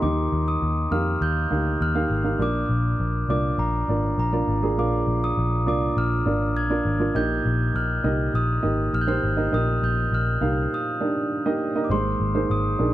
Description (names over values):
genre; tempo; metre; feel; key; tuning
piano-driven pop; 101 BPM; 4/4; straight; Eb major; A4 = 441 Hz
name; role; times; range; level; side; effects
glockenspiel with rubber mallets; melody; 0.0-12.9 s; Bb5 to Ab6; -27 LUFS; left 1 dB; none
warm upright piano; accompaniment; 0.0-12.9 s; Ab2 to F5; -25 LUFS; right 2 dB; none
vintage muted picked electric bass; bass; 0.0-12.9 s; Ab1 to F2; -24 LUFS; left 1 dB; none
room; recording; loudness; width
light reverb; dry, close 1970s-style studio recording; -21 LUFS; side -14 dB against mid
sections
0.0-11.9 A section; 11.9-12.9 B section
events
break 10.7-11.9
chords
0.0 Eb; 2.4 Bb; 7.1 Eb; 11.9 Abadd9